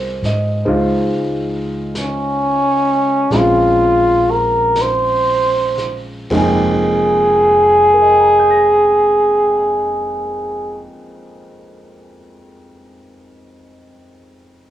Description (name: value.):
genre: jazz ballad.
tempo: 37-47 BPM.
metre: 4/4.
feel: swing 66% on 8ths.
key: F minor.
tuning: A4 = 440 Hz.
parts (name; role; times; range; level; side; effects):
warm concert grand piano; accompaniment; 0.0-14.7 s; F2 to Bb6; -20 LUFS; equal; cassette tape.
upright bass; bass; 0.0-10.8 s; F1 to Ab2; -24 LUFS; equal; none.
vintage brush drum kit; drums; 0.2-7.0 s; brushed snare drum, hi-hat, kick drum, ride cymbal, snare drum; -32 LUFS; equal; cassette tape.
trumpet with cup mute; melody; 2.0-10.9 s; Db4 to C5; -12 LUFS; equal; cassette tape.
room: moderate small room ambience, RT60 0.5 s.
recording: home recording on cassette, small room ambience.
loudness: -12 LUFS.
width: side -12 dB against mid.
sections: 0.7-6.3 A section; 6.3-12.7 B section.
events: slowing down 0.0-6.3.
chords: 0.0 Fm11; 0.7 Dbmaj7; 3.3 Bbm9; 6.3 Fm11.